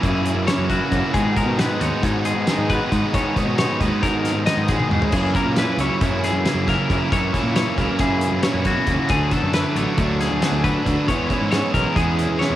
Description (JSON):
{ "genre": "math rock and midwest emo", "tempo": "271 BPM (eighths)", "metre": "9/8", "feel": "straight", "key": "unclear", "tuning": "A4 = 439 Hz", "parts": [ { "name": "mellow electric guitar", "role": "accompaniment", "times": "0.0-12.6 s", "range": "E2 to G#4", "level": "-25 LUFS", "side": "right 3 dB", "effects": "lush chorus, cassette tape" }, { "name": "twelve-string electric guitar", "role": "arpeggios", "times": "0.0-12.6 s", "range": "F#4 to D#5", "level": "-25 LUFS", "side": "left 5 dB", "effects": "spring reverb, cassette tape, tape echo" }, { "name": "cranked stack guitar", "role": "riff", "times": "0.0-12.6 s", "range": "F#2 to E4", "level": "-23 LUFS", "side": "equal", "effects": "overdrive, cassette tape" }, { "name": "fuzz picked electric bass", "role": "bass", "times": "0.0-12.6 s", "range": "A1 to B2", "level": "-24 LUFS", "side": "equal", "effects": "overdrive" }, { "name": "loose indie drum kit", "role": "drums", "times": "0.0-12.5 s", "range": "hi-hat, kick drum, snare drum, splash cymbal, toms", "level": "-24 LUFS", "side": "equal", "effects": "cassette tape" } ], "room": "little or no reverb", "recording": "home recording on cassette", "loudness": "-17 LUFS", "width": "side -13 dB against mid", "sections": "0.0-12.6 A section", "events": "drum fill 4.8-5.1, 12.4", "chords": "0.0 F#9; 1.1 G#m9; 5.1 F#9; 9.1 Dmaj9#11; 11.1 E6" }